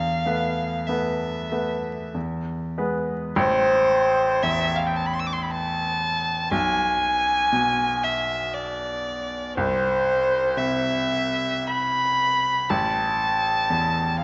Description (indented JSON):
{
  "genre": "classical, romantic duo for violin and grand piano",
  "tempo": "58 BPM",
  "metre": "3/4",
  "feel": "uneven beats, rubato",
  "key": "A minor",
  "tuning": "A4 = 439 Hz",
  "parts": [
    { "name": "dark violin", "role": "melody", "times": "0.0-14.2 s", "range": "C5 to E6", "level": "-25 LUFS", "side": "equal", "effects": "none" },
    { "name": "bright baby grand piano", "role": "accompaniment", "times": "0.0-14.2 s", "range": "A1 to B4", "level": "-28 LUFS", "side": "equal", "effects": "none" }
  ],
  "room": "wet recital hall reverb, RT60 1.7 s",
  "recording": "vinyl crackle, nothing above 7.6 kHz",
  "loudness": "-23 LUFS",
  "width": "mono",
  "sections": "0.0-3.4 A section; 3.4-14.2 B section",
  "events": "none",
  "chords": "0.0 Esus4; 2.1 E; 3.4 Am; 6.5 N.C.; 12.7 A5"
}